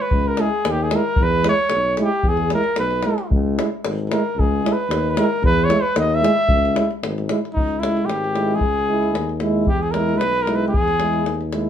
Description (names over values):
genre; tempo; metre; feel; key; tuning
balkan folk, Balkan brass band; 113 BPM; 2/4; swing 53% on 16ths; C# dorian sharp4; A4 = 443 Hz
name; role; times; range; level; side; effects
mellow cornet; melody; 0.0-11.5 s; D#4 to E5; -20 LUFS; equal; none
warm tuba; bass; 0.1-11.7 s; G#1 to E2; -24 LUFS; left 1 dB; none
davul; percussion; 0.1-11.7 s; none; -23 LUFS; left 1 dB; none
clear French horn; accompaniment; 0.4-11.7 s; E4; -29 LUFS; left 1 dB; none
mellow euphonium; accompaniment; 0.4-11.7 s; G#3; -24 LUFS; right 3 dB; none
room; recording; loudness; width
wet studio reverb, RT60 0.6 s; band playing live in one room; -17 LUFS; side -9 dB against mid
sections
0.0-7.6 A section; 7.6-11.7 B section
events
cornet solo 0.0-7.6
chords
0.0 C#m; 1.2 E; 3.3 C#m; 5.4 E; 6.5 C#m; 9.7 E